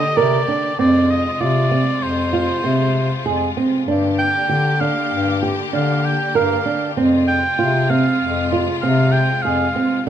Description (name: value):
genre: contemporary instrumental, chamber music in an uneven meter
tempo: 97 BPM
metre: 5/4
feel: straight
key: unclear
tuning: A4 = 441 Hz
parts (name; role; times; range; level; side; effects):
- clear oboe; melody; 0.0-10.1 s; C5 to G5; -22 LUFS; right 1 dB; none
- bright symphonic string section; sustained chords; 0.0-10.0 s; C3 to G4; -26 LUFS; left 4 dB; none
- flamenco guitar; arpeggios; 0.0-10.1 s; C4 to Bb4; -20 LUFS; right 4 dB; none
- mellow bass clarinet; bass; 0.2-10.1 s; F2 to D3; -20 LUFS; left 3 dB; none
room: moderate recital hall reverb, RT60 1.7 s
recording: close, detailed microphones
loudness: -15 LUFS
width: side -10 dB against mid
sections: 0.0-10.1 A section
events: none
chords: 0.0 Gm; 0.8 Fm; 3.9 Gm; 7.0 Fm